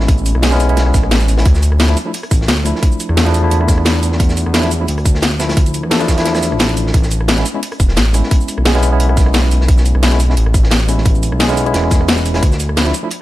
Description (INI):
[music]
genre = liquid drum and bass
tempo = 175 BPM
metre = 4/4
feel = swing 54% on 16ths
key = A major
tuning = A4 = 439 Hz
[part]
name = tine electric piano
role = accompaniment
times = 0.0-13.1 s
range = F3 to A4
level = -19 LUFS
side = equal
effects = medium stereo tremolo, digital delay
[part]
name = smooth synth bass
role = bass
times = 0.0-12.9 s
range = E1 to E2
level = -14 LUFS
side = equal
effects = tube saturation
[part]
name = crunchy breakbeat drum kit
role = drums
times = 0.0-13.2 s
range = hi-hat, snare drum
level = -24 LUFS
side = equal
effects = high-pass filter on hats, small room ambience, high-pass filter on snare, high-pass filter on room
[part]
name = drum and bass drum kit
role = drums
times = 0.1-13.2 s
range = cabasa, hi-hat, rim click, snare drum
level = -19 LUFS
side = equal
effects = overdrive, small room ambience
[part]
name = electronic kick drum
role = drums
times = 0.1-12.5 s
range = none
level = -12 LUFS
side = equal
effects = overdrive, small room ambience
[sound]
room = digital ambience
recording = lossy compression artefacts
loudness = -11 LUFS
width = side -16 dB against mid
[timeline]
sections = 0.0-13.2 A section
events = kick drops out 6.3-6.9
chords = 0.0 Amaj9; 1.5 Dmadd9; 6.9 Amaj9; 12.4 Dmadd9